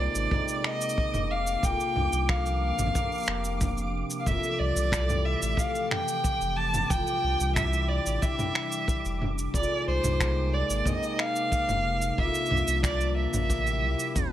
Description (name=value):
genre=folktronica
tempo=91 BPM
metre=4/4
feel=straight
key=unclear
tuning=A4 = 440 Hz
part: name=dark violin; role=melody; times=0.0-14.3 s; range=C5 to A5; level=-29 LUFS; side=equal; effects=tape echo
part: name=warbly tape-like pad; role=sustained chords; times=0.0-14.3 s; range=C3 to E4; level=-35 LUFS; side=equal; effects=chorus, built-in reverb
part: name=cimbalom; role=arpeggios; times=0.0-14.3 s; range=F2 to Bb4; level=-36 LUFS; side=left 3 dB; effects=low-pass filter, tape echo
part: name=warm sub bass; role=bass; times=0.0-14.0 s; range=F1 to C2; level=-29 LUFS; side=equal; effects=tube saturation
part: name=flickering grainy texture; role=texture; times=0.0-14.3 s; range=D6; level=-41 LUFS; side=right 4 dB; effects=built-in reverb
part: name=organic electronic drum kit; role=drums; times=0.2-14.3 s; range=cabasa, finger snaps, toms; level=-31 LUFS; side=right 1 dB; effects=none
part: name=kick drum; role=drums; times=0.3-14.3 s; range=none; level=-30 LUFS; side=equal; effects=none
room=light reverb, small room ambience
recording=tape stop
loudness=-25 LUFS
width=side -12 dB against mid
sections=0.0-14.3 A section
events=tape stop 14.2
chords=0.0 Abadd9; 1.6 Bbadd9/F; 4.3 Fmaj7; 6.9 Cadd9/F; 9.5 Abadd9/F; 12.2 Bbadd9/F; 13.5 C7